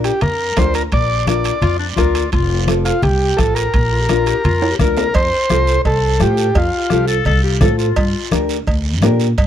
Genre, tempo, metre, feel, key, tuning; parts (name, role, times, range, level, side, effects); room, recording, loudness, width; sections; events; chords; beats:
latin, cumbia; 170 BPM; 4/4; straight; A4 = 441 Hz
overdriven combo organ; melody; 0.0-7.1 s; F4 to D5; -19 LUFS; equal; tape echo
nylon-string guitar; accompaniment; 0.0-9.3 s; C4 to Bb4; -21 LUFS; left 2 dB
upright bass; bass; 0.0-9.5 s; F1 to Bb2; -18 LUFS; equal
guiro; percussion; 0.0-9.5 s; -29 LUFS; right 10 dB
timbales and cowbell; percussion; 0.0-9.5 s; -25 LUFS; right 5 dB
bombo; percussion; 0.2-9.5 s; -20 LUFS; equal
congas; percussion; 0.2-9.5 s; -21 LUFS; left 2 dB
breathy clarinet; second line; 1.6-8.4 s; D4 to Bb4; -22 LUFS; left 9 dB
small room ambience; dry, close 1970s-style studio recording; -13 LUFS; side -10 dB against mid
0.0-5.1 A section; 5.1-9.5 B section
drum fill 4.6-5.1
0.0 Bb; 2.3 Fadd9; 3.7 Bb; 5.1 F; 8.0 Gm7
0.21 0.57 | 0.92 1.27 1.62 1.98 | 2.33 2.68 3.04 3.39 | 3.74 4.09 4.44 4.80 | 5.15 5.50 5.85 6.21 | 6.56 6.91 7.26 7.61 | 7.97 8.32 8.67 9.02 | 9.37